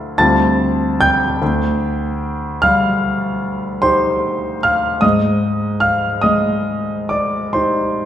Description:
classical, impressionist solo piano; 41-51 BPM (dotted quarters); 9/8; rubato; A4 = 440 Hz
clear grand piano; solo; 0.0-8.1 s; D2 to A6; -14 LUFS; equal
wet recital hall reverb, RT60 1.9 s; heard from further back in the room; -14 LUFS; side -10 dB against mid
0.0-8.1 A section
0.2 F69/D; 1.4 Ebmaj7/D; 5.0 Abmaj7
0.17 | 1.41 2.62 3.81 | 5.03 6.23 7.54

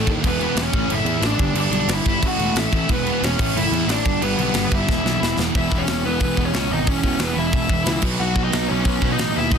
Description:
punk rock; 181 BPM; 4/4; straight; A4 = 438 Hz
bluesy overdriven lead guitar; melody; 0.0-9.6 s; B3 to F#5; -24 LUFS; left 1 dB; distortion, digital delay
overdriven semi-hollow guitar; riff; 0.0-9.6 s; E2 to B3; -25 LUFS; right 1 dB
sludgy distorted guitar; riff; 0.0-9.6 s; E2 to B3; -26 LUFS; right 1 dB; overdrive
fuzz picked electric bass; bass; 0.1-9.6 s; E1 to E2; -25 LUFS; equal; overdrive
tight metal drum kit; drums; 0.1-9.6 s; crash cymbal, hi-hat, kick drum, snare drum; -23 LUFS; equal
little or no reverb; dense, heavily limited modern master; -18 LUFS; side -7 dB against mid
0.0-5.5 A section; 5.5-9.6 B section
drum fill 4.9-5.5
0.2 E5; 0.7 A; 1.4 G; 2.2 A5; 2.9 E5; 3.4 A; 4.1 G; 4.9 E5; 8.0 B
| 0.24 0.57 0.90 1.23 | 1.56 1.90 2.23 2.56 | 2.89 3.22 3.55 3.88 | 4.22 4.55 4.88 5.21 | 5.54 5.87 6.21 6.54 | 6.87 7.20 7.53 7.86 | 8.19 8.52 8.86 9.19 | 9.52

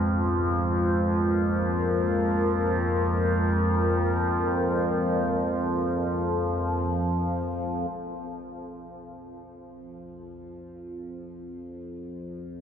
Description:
dark ambient drone; free time; F minor; A4 = 439 Hz
dark analog pad; sustained chords; 0.0-7.9 s; Ab3 to C6; -28 LUFS; left 1 dB; chorus
carillon bells; arpeggios; 0.0-2.8 s; B3 to F4; -46 LUFS; right 1 dB
overtone-sweeping drone; drone; 0.0-12.6 s; F2 to F3; -26 LUFS; equal; chorus, built-in reverb, phaser
wet huge ambient reverb, RT60 7.6 s; -23 LUFS; side -8 dB against mid
0.0-7.9 A section; 7.9-12.6 A section
0.0 Fm; 7.9 N.C.
free time

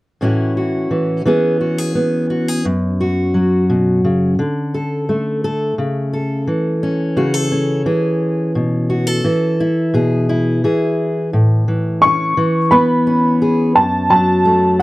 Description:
folk; 86 BPM; 4/4; straight; A major; A4 = 438 Hz
fingerpicked steel-string acoustic guitar; accompaniment; 0.2-14.8 s; F#2 to A4; -15 LUFS; equal
warm upright piano; melody; 12.0-14.8 s; A5 to C#6; -14 LUFS; equal
light reverb; dry, close 1970s-style studio recording; -14 LUFS; side -18 dB against mid
0.2-11.3 A section; 11.3-14.8 B section
0.2 A6; 1.3 E6; 2.6 F#5; 4.4 D5; 5.8 A/C#; 8.6 E6/B; 11.3 A; 12.4 E6; 13.8 F#m
| 0.21 0.90 1.60 2.29 | 2.99 3.69 4.38 5.08 | 5.77 6.47 7.16 7.86 | 8.55 9.24 9.94 10.63 | 11.33 12.02 12.71 13.41 | 14.10 14.79

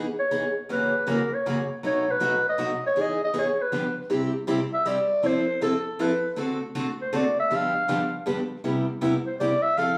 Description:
jazz; 158 BPM; 3/4; swing 62% on 8ths; E major, C major from 4.1 s; A4 = 440 Hz
picked steel-string acoustic guitar; accompaniment; 0.0-10.0 s; F#2 to A4; -29 LUFS; equal
growling clarinet; melody; 0.2-10.0 s; A4 to F5; -27 LUFS; equal
wet large studio reverb, RT60 0.9 s; band playing live in one room, studio reverb; -25 LUFS; mono
0.0-4.1 A section; 4.1-10.0 B section
0.0 Emaj7; 0.7 F#7; 1.8 B7; 3.0 Emaj7; 3.7 G7; 4.1 C; 5.2 Fmaj7; 6.4 D7; 7.5 G7; 8.6 Cmaj7
0.32 | 0.69 1.07 1.45 | 1.83 2.21 2.59 | 2.96 3.34 3.72 | 4.10 4.48 4.86 | 5.24 5.61 5.99 | 6.37 6.75 7.13 | 7.50 7.88 8.26 | 8.64 9.02 9.40 | 9.78

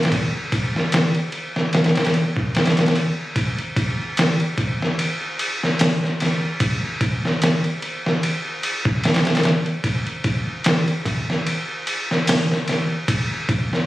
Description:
trip hop; 74 BPM; 4/4; swing 55% on 16ths
trip hop sampler-style drum kit; drums; 0.0-13.9 s; hi-hat, kick drum, ride cymbal, snare drum; -18 LUFS; equal; overdrive, small room reverb
light reverb, digital ambience; recorded on a phone in the room, club reverb, vinyl crackle; -18 LUFS; side -16 dB against mid
0.0-3.4 A section; 3.4-13.9 A section
| 0.12 0.93 1.74 2.55 | 3.36 4.17 4.98 5.79 | 6.60 7.41 8.22 9.04 | 9.85 10.66 11.47 12.28 | 13.09

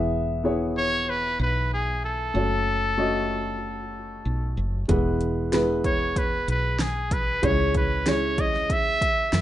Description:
piano-driven pop; 94 BPM; 4/4; straight; E major; A4 = 439 Hz
dark upright piano; accompaniment; 0.0-9.4 s; C#3 to E5; -27 LUFS; equal; plate reverb
woody fretless electric bass; bass; 0.0-9.4 s; E1 to F#2; -28 LUFS; equal; lush chorus
bright trumpet; melody; 0.8-9.4 s; G#4 to E5; -26 LUFS; equal; plate reverb
deep house drum kit; drums; 4.9-9.4 s; hi-hat, kick drum, snare drum; -27 LUFS; equal; overdrive
moderate studio reverb, RT60 0.6 s; rough home demo mix, nothing above 10.5 kHz; -22 LUFS; side -13 dB against mid
0.0-9.4 A section
0.0 E; 2.3 F#m; 4.9 E; 7.4 C#m
0.44 1.08 1.71 | 2.35 2.98 3.62 4.25 | 4.89 5.53 6.16 6.79 | 7.43 8.06 8.70 9.33

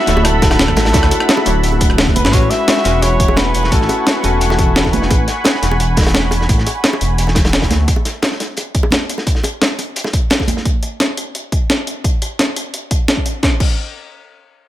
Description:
liquid drum and bass; 173 BPM; 4/4; straight; A4 = 440 Hz
trumpet with cup mute; melody; 0.0-5.3 s; A4 to E5; -20 LUFS; left 1 dB; ping-pong delay
vintage hollow-body jazz guitar; accompaniment; 0.0-5.1 s; G#3 to C#5; -21 LUFS; left 2 dB; ping-pong delay
warm analog pad; sustained chords; 0.0-7.9 s; E5 to C#6; -22 LUFS; right 1 dB; chorus, sidechain pumping
dark detuned saw bass; bass; 0.1-7.9 s; D1 to D2; -16 LUFS; equal
crunchy breakbeat drum kit; drums; 0.1-10.6 s; hi-hat, snare drum; -22 LUFS; equal; high-pass filter on hats, high-pass filter on snare, high-pass filter on room
jungle sampler-style drum kit; drums; 0.1-13.7 s; crash cymbal, hi-hat, rim click, snare drum; -18 LUFS; equal; overdrive
bongos and congas; percussion; 0.2-10.5 s; -24 LUFS; right 3 dB
electronic kick drum; drums; 0.4-13.7 s; -16 LUFS; equal
studio reverb; -12 LUFS; side -13 dB against mid
0.0-2.3 A section; 2.3-13.4 B section; 13.4-14.7 C section
drop 0.0-2.3; drum fill 2.0-2.3
0.0 Dmaj9; 2.3 Amaj13; 7.7 Dmaj9; 13.4 N.C.
0.25 0.59 | 0.94 1.29 1.63 1.98 | 2.33 2.67 3.02 3.37 | 3.71 4.06 4.41 4.76 | 5.10 5.45 5.80 6.14 | 6.49 6.84 7.18 7.53 | 7.88 8.22 8.57 8.92 | 9.27 9.61 9.96 10.30 | 10.65 11.00 11.35 11.69 | 12.04 12.39 12.73 13.08 | 13.43

